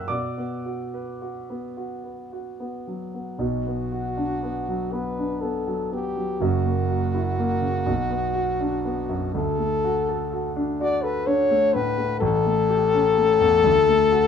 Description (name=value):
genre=classical, romantic duo for French horn and grand piano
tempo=36-43 BPM (dotted quarters)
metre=6/8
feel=rubato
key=B minor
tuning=A4 = 439 Hz
part: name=warm concert grand piano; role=accompaniment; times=0.0-14.3 s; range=F#1 to F#6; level=-25 LUFS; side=right 1 dB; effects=none
part: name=clear French horn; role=melody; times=3.4-14.3 s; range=F#4 to D5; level=-22 LUFS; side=left 4 dB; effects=none
room=moderate small room reverb, RT60 0.5 s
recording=none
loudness=-21 LUFS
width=side -7 dB against mid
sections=0.0-3.4 A section; 3.4-14.3 A section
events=none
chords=0.1 Bm; 6.4 F#7; 7.9 Bm; 9.3 D; 12.2 A7; 13.7 D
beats=| 0.11 1.77 | 3.40 4.93 | 6.41 7.87 | 9.35 10.81 | 12.22 13.66